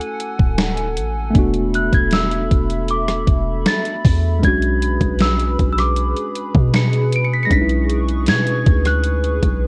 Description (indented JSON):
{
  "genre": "contemporary R&B",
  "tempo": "78 BPM",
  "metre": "4/4",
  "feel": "straight",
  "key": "B dorian",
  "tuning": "A4 = 440 Hz",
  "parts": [
    { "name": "celesta", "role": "melody", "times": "0.0-9.7 s", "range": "D6 to D7", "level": "-26 LUFS", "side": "equal", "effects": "tape echo" },
    { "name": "mellow tine electric piano", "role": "accompaniment", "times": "0.0-9.7 s", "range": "G#3 to F#4", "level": "-26 LUFS", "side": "equal", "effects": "none" },
    { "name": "hollow soft pad", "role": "sustained chords", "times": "0.0-9.7 s", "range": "G#4 to C#6", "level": "-29 LUFS", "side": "equal", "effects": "chorus, sidechain pumping" },
    { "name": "gated 80s digital drum machine", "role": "drums", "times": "0.0-9.6 s", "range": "hi-hat, kick drum, rim click, snare drum", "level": "-20 LUFS", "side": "equal", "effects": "gated reverb, gated reverb snare, overdrive" },
    { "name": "warm 808-style bass", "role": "bass", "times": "0.4-9.7 s", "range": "D1 to B2", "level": "-21 LUFS", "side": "equal", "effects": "none" }
  ],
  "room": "little or no reverb",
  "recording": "worn, warbling old tape, cassette tape, warbly pitch drift",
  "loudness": "-17 LUFS",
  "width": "mono",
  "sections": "0.0-9.7 A section",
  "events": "none",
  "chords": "0.0 Dmaj7; 1.4 E7sus4; 4.4 Bm69",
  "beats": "0.59 | 1.35 2.12 2.89 3.66 | 4.43 5.20 5.97 6.74 | 7.51 8.28 9.05"
}